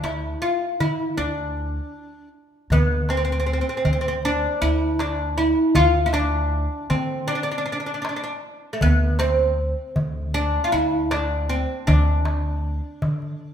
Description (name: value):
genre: Turkish makam ensemble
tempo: 78 BPM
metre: 4/4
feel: straight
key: D makam huseyni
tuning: A4 = 440 Hz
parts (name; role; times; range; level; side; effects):
- oud; melody; 0.0-13.5 s; A3 to F4; -22 LUFS; equal; none
- upright bass; bass; 0.0-13.5 s; D2 to D3; -24 LUFS; equal; none
- darbuka; percussion; 0.0-13.3 s; none; -26 LUFS; equal; none
room: moderate recital hall reverb, RT60 1.4 s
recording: minimal, uncompressed stereo recording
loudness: -20 LUFS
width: side -9 dB against mid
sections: 0.0-2.7 A section; 2.7-13.5 B section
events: stop 1.9-2.7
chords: none